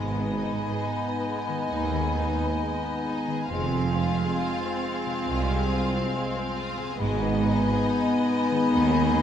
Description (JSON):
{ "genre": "cinematic", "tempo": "69 BPM", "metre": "4/4", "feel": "rubato", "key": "G# dorian", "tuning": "A4 = 440 Hz", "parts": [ { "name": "warm symphonic violin section", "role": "melody", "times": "0.0-9.2 s", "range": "D#5 to F5", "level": "-36 LUFS", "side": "left 4 dB", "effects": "none" }, { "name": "clear symphonic violin section", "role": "second line", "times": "0.0-9.2 s", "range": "G#3 to G#4", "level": "-36 LUFS", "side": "left 2 dB", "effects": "none" }, { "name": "small flute group", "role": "second line", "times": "0.0-9.2 s", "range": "B5 to C6", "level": "-35 LUFS", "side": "left 4 dB", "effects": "none" }, { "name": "warm clarinet", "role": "second line", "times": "0.0-9.2 s", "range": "D#4 to F4", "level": "-36 LUFS", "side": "left 1 dB", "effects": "none" }, { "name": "warm cor anglais", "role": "second line", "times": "0.0-9.2 s", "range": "G#5 to Ab5", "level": "-35 LUFS", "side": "right 2 dB", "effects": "none" }, { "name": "rich symphonic viola section", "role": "accompaniment", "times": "0.0-9.2 s", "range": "B3 to C4", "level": "-31 LUFS", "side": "equal", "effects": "none" }, { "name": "warm French horn section", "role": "sustained chords", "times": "0.0-9.2 s", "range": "G#3 to C4", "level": "-32 LUFS", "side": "left 3 dB", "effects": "none" }, { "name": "concert harp", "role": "arpeggios", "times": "0.0-9.2 s", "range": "F2 to Ab5", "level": "-35 LUFS", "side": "left 6 dB", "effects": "none" }, { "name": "rich symphonic cello section", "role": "bass", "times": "0.0-9.2 s", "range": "C2 to G#2", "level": "-30 LUFS", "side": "right 4 dB", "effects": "none" }, { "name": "rich symphonic double bass section", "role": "bass", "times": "0.0-9.2 s", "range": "F1 to D#2", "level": "-32 LUFS", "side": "right 4 dB", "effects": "none" } ], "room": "moderate scoring stage reverb, RT60 2.0 s", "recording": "none", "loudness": "-24 LUFS", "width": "side -9 dB against mid", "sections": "0.0-9.2 A section", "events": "none", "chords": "0.0 G#m; 3.5 Fm; 7.0 G#m", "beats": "0.83 1.71 2.60 | 3.49 4.38 5.27 6.13 | 6.99 7.85 8.72" }